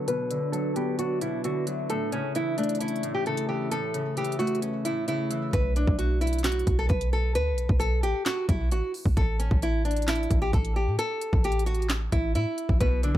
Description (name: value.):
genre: hip hop, trap.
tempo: 132 BPM.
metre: 4/4.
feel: half-time.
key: unclear.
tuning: A4 = 440 Hz.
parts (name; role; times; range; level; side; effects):
nylon-string guitar; melody; 0.0-13.2 s; C#4 to B4; -29 LUFS; equal; low-pass filter, digital delay.
Celtic harp; accompaniment; 0.0-7.7, 12.8-13.2 s; A2 to D4; -32 LUFS; left 2 dB; low-pass filter.
deep dark ambient pad; sustained chords; 0.0-5.5 s; C#4 to E5; -36 LUFS; right 1 dB; chorus, built-in reverb, low-pass filter.
trap drum kit; drums; 0.1-13.2 s; handclaps, hi-hat, kick drum, snare drum; -28 LUFS; equal; none.
clean 808-style bass; bass; 5.5-13.2 s; A1 to A2; -26 LUFS; equal; none.
room: studio ambience.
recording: dark, warm production.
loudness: -24 LUFS.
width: side -13 dB against mid.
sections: 0.0-5.5 A section; 5.5-13.2 B section.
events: filter sweep 0.0-5.5.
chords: 0.0 Bm; 1.9 A; 5.5 B5; 9.2 A5.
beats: | 0.08 0.53 0.99 1.44 | 1.90 2.35 2.81 3.26 | 3.71 4.17 4.62 5.08 | 5.53 5.99 6.44 6.90 | 7.35 7.81 8.26 8.71 | 9.17 9.62 10.08 10.53 | 10.99 11.44 11.90 12.35 | 12.81.